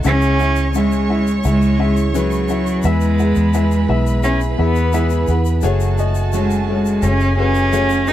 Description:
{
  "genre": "piano-driven pop",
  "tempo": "86 BPM",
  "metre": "4/4",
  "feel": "straight",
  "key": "C# minor",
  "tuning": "A4 = 436 Hz",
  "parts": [
    { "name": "warm chamber violin section", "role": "second line", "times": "0.0-8.1 s", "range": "F#4 to C#6", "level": "-28 LUFS", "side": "right 4 dB", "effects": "none" },
    { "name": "dark upright piano", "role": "accompaniment", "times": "0.0-8.1 s", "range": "C#3 to F#5", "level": "-23 LUFS", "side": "left 8 dB", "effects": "none" },
    { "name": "picked steel-string acoustic guitar", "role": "riff", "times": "0.0-8.1 s", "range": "C#3 to G#4", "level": "-25 LUFS", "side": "right 11 dB", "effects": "none" },
    { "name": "vintage muted fingered electric bass", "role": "bass", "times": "0.0-8.1 s", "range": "F#1 to E2", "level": "-18 LUFS", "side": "equal", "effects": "none" },
    { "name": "tube shaker", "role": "percussion", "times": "0.0-8.1 s", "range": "none", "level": "-36 LUFS", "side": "left 26 dB", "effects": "none" },
    { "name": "warm cello", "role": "melody", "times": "0.1-8.1 s", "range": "F#3 to D#4", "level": "-18 LUFS", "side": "equal", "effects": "none" }
  ],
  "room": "little or no reverb",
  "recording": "dry, close 1970s-style studio recording",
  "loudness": "-14 LUFS",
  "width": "side -12 dB against mid",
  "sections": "0.0-8.1 A section",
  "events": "none",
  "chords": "0.1 C#m; 2.8 E; 5.6 F#madd9"
}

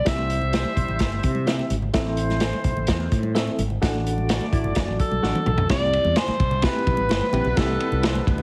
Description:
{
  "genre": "uptempo 1960s-style soul",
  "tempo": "128 BPM",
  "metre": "4/4",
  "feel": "straight",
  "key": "unclear",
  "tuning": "A4 = 440 Hz",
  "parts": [
    { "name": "bright alto saxophone", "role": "melody", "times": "0.0-1.7, 5.0-8.3 s", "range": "A4 to E5", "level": "-28 LUFS", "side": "equal", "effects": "none" },
    { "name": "barky reed electric piano", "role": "accompaniment", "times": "0.0-8.1 s", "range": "C4 to F#5", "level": "-31 LUFS", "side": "equal", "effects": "overdrive, fast tremolo" },
    { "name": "mellow horn section", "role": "second line", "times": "0.1-8.4 s", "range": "G3 to D5", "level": "-34 LUFS", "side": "equal", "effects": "none" },
    { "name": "mellow fretless electric bass", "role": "bass", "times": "0.1-8.4 s", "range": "F#1 to C3", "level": "-28 LUFS", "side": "equal", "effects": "none" },
    { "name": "vintage drum kit", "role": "drums", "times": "0.1-8.4 s", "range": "hi-hat, kick drum, ride cymbal, snare drum, toms", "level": "-27 LUFS", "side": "equal", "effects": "none" },
    { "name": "congas", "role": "percussion", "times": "0.1-8.4 s", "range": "none", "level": "-36 LUFS", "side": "equal", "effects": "none" },
    { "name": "electric guitar through a small old amp", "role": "stabs", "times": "0.5-8.2 s", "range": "E4 to E5", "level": "-37 LUFS", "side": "equal", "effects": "none" },
    { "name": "hollow-body jazz guitar", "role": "riff", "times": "4.3-5.4 s", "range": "F#3 to F#4", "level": "-33 LUFS", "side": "equal", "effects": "none" }
  ],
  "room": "light reverb",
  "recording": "heavily compressed radio sound, multiband compression",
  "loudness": "-22 LUFS",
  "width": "mono",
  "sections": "0.0-5.7 A section; 5.7-8.4 B section",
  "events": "drum fill 5.2-5.7",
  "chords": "0.1 C; 1.9 Am; 3.8 D; 5.7 C"
}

